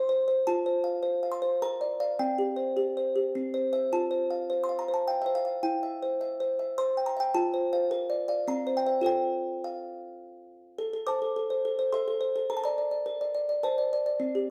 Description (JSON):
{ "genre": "classical, lullaby for music box", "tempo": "105 BPM", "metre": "3/4", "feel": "straight", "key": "F major", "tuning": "A4 = 442 Hz", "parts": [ { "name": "music box", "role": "solo", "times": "0.0-14.5 s", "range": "C4 to D6", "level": "-29 LUFS", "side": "equal", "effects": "none" } ], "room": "wet large studio reverb, RT60 1.2 s", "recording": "band playing live in one room", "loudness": "-29 LUFS", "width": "mono", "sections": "0.0-10.8 A section; 10.8-14.5 B section", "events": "none", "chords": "0.5 F; 1.6 Bb; 2.2 C5; 3.3 C; 3.9 F; 5.6 C/E; 7.3 F; 7.9 Bb; 8.5 C7; 9.1 F; 10.8 Am; 12.5 Bbmaj9", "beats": "| 0.47 1.03 1.61 | 2.18 2.76 3.33 | 3.91 4.49 5.06 | 5.63 6.20 6.77 | 7.34 7.90 8.48 | 9.05 9.63 10.21 | 10.78 11.36 11.93 | 12.50 13.07 13.64 | 14.21" }